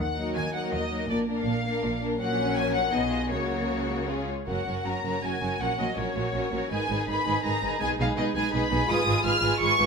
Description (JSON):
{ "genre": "quick classical-period movement for string orchestra", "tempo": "163 BPM", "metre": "3/4", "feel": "rubato", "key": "F# major", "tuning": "A4 = 440 Hz", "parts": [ { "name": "clear studio violin section", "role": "melody", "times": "0.0-9.9 s", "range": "C#5 to F6", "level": "-28 LUFS", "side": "left 1 dB", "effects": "none" }, { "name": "clear chamber cello section", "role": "bass", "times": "0.0-9.9 s", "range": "F#2 to Eb3", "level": "-33 LUFS", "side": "right 3 dB", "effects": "none" }, { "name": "rich studio double bass section", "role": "bass", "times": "0.0-9.9 s", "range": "F#1 to Eb2", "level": "-34 LUFS", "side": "right 2 dB", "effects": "none" }, { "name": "rich studio violin section", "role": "second line", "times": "0.2-9.9 s", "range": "C#4 to B4", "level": "-32 LUFS", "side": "left 2 dB", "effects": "none" }, { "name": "rich studio viola section", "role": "accompaniment", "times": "0.2-9.9 s", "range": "D#3 to F4", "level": "-31 LUFS", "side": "equal", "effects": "none" } ], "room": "light reverb", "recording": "close, detailed microphones", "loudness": "-24 LUFS", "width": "side -5 dB against mid", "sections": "0.0-4.5 A section; 4.5-9.9 B section", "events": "none", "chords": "0.0 Ebm; 1.1 Bb; 2.2 F#/A#; 2.9 G#m/B; 3.3 F#/C#; 4.1 C#; 4.5 F#; 5.6 F#/A#; 6.7 G#m; 7.8 G#m/B; 8.9 Fm7b5/Ab" }